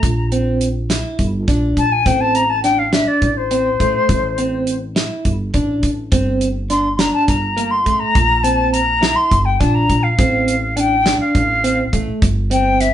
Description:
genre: progressive instrumental, band music in an uneven meter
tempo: 207 BPM (eighths)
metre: 7/8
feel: straight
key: unclear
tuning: A4 = 436 Hz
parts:
  - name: bright wooden flute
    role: melody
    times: 0.0-12.9 s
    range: C5 to C6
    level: -17 LUFS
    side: left 2 dB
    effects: none
  - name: clean electric guitar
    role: arpeggios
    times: 0.0-12.9 s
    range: A3 to E4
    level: -20 LUFS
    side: right 2 dB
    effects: harmonic tremolo
  - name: upright bass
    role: bass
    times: 0.0-12.9 s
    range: G1 to Bb1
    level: -20 LUFS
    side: equal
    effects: none
  - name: damped 70s drum kit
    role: drums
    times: 0.0-12.9 s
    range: hi-hat, kick drum, snare drum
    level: -19 LUFS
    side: equal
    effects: none
room: wet studio reverb, RT60 0.6 s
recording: band playing live in one room, nothing above 10.7 kHz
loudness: -14 LUFS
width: side -11 dB against mid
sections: 0.0-12.9 A section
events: flute solo 0.0-12.9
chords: 0.0 Bbadd9; 2.1 Amadd11; 4.1 Am; 6.1 Gmadd9; 8.2 Bbadd9; 10.2 F/A; 12.2 N.C.

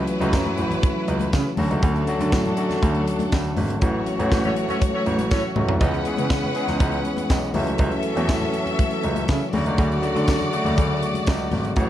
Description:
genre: disco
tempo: 121 BPM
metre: 4/4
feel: straight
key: unclear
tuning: A4 = 445 Hz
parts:
  - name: clear studio string section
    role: second line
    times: 0.0-11.9 s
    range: F#3 to F#5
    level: -26 LUFS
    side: equal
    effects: none
  - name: overdriven tine electric piano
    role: accompaniment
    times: 0.0-11.9 s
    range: C#3 to G#4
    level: -25 LUFS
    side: left 2 dB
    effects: none
  - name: tight funk drum kit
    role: drums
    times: 0.1-11.9 s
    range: hi-hat, kick drum, snare drum, toms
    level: -23 LUFS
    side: equal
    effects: none
  - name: congas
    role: percussion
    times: 0.1-11.9 s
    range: none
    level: -32 LUFS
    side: left 5 dB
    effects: none
  - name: warm grand piano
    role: bass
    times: 0.2-11.9 s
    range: G#1 to D3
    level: -25 LUFS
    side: right 1 dB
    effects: none
  - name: tambourine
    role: percussion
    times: 0.3-11.4 s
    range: none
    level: -42 LUFS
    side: right 5 dB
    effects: none
  - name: warm horn section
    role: stabs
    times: 4.4-5.7 s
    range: C#4 to C#5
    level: -29 LUFS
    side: right 1 dB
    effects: none
room: studio reverb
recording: dark, warm production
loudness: -19 LUFS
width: side -12 dB against mid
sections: 0.0-11.9 A section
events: band accent 3.8-5.8; drum fill 5.3-5.8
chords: 0.0 F#m7/C#; 1.6 Dmaj7; 3.8 A6; 5.8 C#m7; 7.5 F#m7/C#; 9.5 Dmaj7

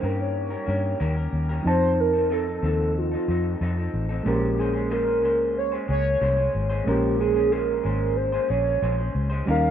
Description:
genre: indie pop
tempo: 92 BPM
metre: 4/4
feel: straight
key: Bb dorian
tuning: A4 = 440 Hz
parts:
  - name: warbly nostalgic lead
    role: melody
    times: 0.0-9.7 s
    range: F4 to F5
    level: -24 LUFS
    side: right 1 dB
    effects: lush chorus, tape echo
  - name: bright reed electric piano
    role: accompaniment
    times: 0.0-9.7 s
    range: F3 to A5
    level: -29 LUFS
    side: right 3 dB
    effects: cassette tape
  - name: electric guitar through a small old amp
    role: accompaniment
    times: 0.0-9.7 s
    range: Bb2 to C5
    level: -33 LUFS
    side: left 2 dB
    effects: wide subtle chorus, vibrato effect
  - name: vintage muted fingered electric bass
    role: bass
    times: 0.0-9.7 s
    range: Ab1 to G2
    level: -26 LUFS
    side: left 1 dB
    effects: none
room: light reverb, digital ambience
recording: rough home demo mix, nothing above 10.4 kHz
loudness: -21 LUFS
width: side -9 dB against mid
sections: 0.0-9.7 A section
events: none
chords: 0.0 Eb7; 1.7 F7; 4.3 Bbm9

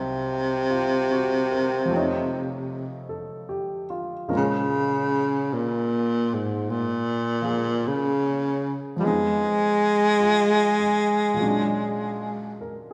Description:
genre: jazz ballad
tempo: 51 BPM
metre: 4/4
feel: swing 66% on 8ths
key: unclear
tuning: A4 = 440 Hz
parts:
  - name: breathy baritone saxophone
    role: melody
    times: 0.0-12.6 s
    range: G#2 to Ab3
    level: -24 LUFS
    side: equal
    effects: none
  - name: warm baby grand piano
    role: accompaniment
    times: 0.0-12.9 s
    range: C2 to Db5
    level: -33 LUFS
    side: equal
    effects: none
room: wet recital hall reverb, RT60 1.7 s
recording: recorded in a church or concert hall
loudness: -24 LUFS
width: mono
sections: 0.0-12.9 A section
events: none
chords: 0.0 Cm7b5; 1.9 F7b13; 4.3 A#m7; 9.0 Fm7b5; 11.4 A#7alt

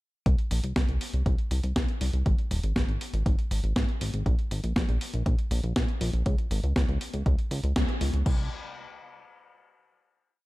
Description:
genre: italo disco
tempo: 120 BPM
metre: 4/4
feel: straight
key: unclear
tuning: A4 = 440 Hz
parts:
  - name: chorused synth bass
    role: bass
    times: 0.3-8.5 s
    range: Eb1 to Db2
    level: -28 LUFS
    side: equal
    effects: tube saturation
  - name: clean 12-bit digital drum machine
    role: drums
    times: 0.3-8.4 s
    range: crash cymbal, hi-hat, snare drum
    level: -33 LUFS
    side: equal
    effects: small room ambience
  - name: electronic kick drum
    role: drums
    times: 0.3-8.4 s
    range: none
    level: -27 LUFS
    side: equal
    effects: small room ambience
room: little or no reverb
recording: dark, warm production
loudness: -25 LUFS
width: side -19 dB against mid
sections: 0.3-8.3 verse; 8.3-10.3 final chord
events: band accent 7.8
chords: none

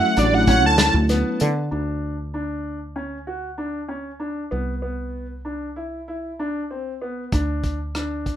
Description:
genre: progressive instrumental, band music in an uneven meter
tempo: 192 BPM (eighths)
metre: 9/8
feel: straight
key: D major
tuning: A4 = 440 Hz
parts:
  - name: wide unison lead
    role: melody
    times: 0.0-0.9 s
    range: D5 to A5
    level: -19 LUFS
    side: right 2 dB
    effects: ping-pong delay
  - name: mellow tine electric piano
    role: accompaniment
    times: 0.0-1.5 s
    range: F#3 to F#4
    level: -23 LUFS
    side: left 1 dB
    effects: fast stereo tremolo
  - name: clear concert grand piano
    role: arpeggios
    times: 0.0-8.4 s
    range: B3 to F#4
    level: -28 LUFS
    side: left 1 dB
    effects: none
  - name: woody fretless electric bass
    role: bass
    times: 0.2-8.4 s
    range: A1 to D3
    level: -24 LUFS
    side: equal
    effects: wide subtle chorus
  - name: warm soul drum kit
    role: drums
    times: 0.2-1.5, 7.3-8.4 s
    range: hi-hat, kick drum, rim click, snare drum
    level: -22 LUFS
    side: equal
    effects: none
room: wet small room reverb, RT60 0.6 s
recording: rough home demo mix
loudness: -21 LUFS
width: side -10 dB against mid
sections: 0.0-1.7 A section; 1.7-8.4 B section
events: analog synth lead solo 0.0-1.7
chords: 0.0 Dmaj7; 1.7 Dmaj7(no3); 4.5 Cmaj7; 7.3 N.C.

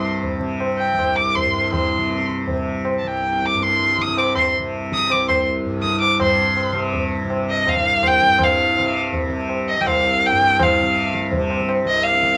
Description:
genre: indian classical, Hindustani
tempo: 162 BPM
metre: 3/4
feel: straight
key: C raga bhimpalasi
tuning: A4 = 440 Hz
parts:
  - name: warm violin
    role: melody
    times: 0.0-12.4 s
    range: Eb5 to Eb6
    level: -20 LUFS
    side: equal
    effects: none
  - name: tanpura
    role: drone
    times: 0.0-12.4 s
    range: C2 to C3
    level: -26 LUFS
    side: equal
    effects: none
  - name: tabla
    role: percussion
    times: 0.2-12.4 s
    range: none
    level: -27 LUFS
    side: equal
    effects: none
room: moderate studio reverb, RT60 0.8 s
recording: vinyl crackle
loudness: -19 LUFS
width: mono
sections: 0.0-6.2 A section; 6.2-12.4 B section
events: speeding up 0.0-12.4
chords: none

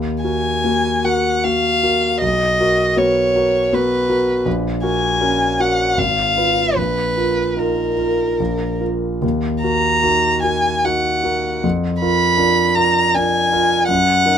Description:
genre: classical, romantic duo for violin and grand piano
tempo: 71-83 BPM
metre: 3/4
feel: rubato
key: Eb minor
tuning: A4 = 440 Hz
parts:
  - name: warm concert grand piano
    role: accompaniment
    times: 0.0-14.4 s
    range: Ab1 to Cb5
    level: -18 LUFS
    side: equal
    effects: none
  - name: warm violin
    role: melody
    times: 0.2-14.4 s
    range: Bb4 to Cb6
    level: -17 LUFS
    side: equal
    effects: none
room: light reverb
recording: none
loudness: -15 LUFS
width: side -8 dB against mid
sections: 0.0-14.4 A section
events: none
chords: 0.0 Ebm; 2.2 Bmaj7; 4.5 Gb/Bb; 6.0 Fdim/Ab; 6.8 Bbsus4; 8.4 Bb5; 9.2 Ebm; 11.6 Bb7/F

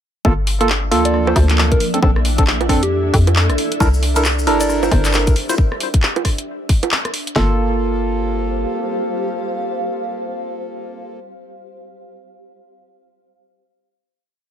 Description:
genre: UK garage, two-step garage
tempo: 135 BPM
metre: 4/4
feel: swing 61% on 16ths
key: G dorian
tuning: A4 = 440 Hz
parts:
  - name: soft string machine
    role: sustained chords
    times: 0.8-7.4 s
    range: D4 to E5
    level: -30 LUFS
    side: right 1 dB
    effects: ensemble chorus, vintage 12-bit sampler grit, sidechain pumping
  - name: percussive organ stab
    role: stabs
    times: 0.2-11.2 s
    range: Bb3 to C5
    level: -20 LUFS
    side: right 2 dB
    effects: chorus, ping-pong delay
  - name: hollow knocking FM bass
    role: bass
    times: 0.2-8.7 s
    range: G1 to F2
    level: -18 LUFS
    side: equal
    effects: none
  - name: garage drum kit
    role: drums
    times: 0.2-7.5 s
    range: kick drum, snare drum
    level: -16 LUFS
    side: equal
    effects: none
  - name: granular cloud pad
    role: texture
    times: 0.8-11.3 s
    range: F3 to F5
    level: -26 LUFS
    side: equal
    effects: built-in reverb, sidechain pumping
  - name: garage drum kit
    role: drums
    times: 0.5-7.3 s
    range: bongos, handclaps, hi-hat, rim click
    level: -20 LUFS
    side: right 1 dB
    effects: none
  - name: soft struck synth lead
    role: melody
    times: 1.1-5.3 s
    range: G4 to D5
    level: -24 LUFS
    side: left 2 dB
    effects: chorus, cassette tape, ping-pong delay
  - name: maracas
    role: percussion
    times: 3.8-5.6 s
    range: none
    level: -28 LUFS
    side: left 4 dB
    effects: none
room: little or no reverb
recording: none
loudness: -15 LUFS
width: side -10 dB against mid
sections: 0.2-7.4 drop; 7.4-10.9 final chord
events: drop 0.2-7.4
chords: 0.2 Gm9; 1.8 Bbmaj9; 3.8 C13; 5.4 D7sus2; 7.4 Gm9

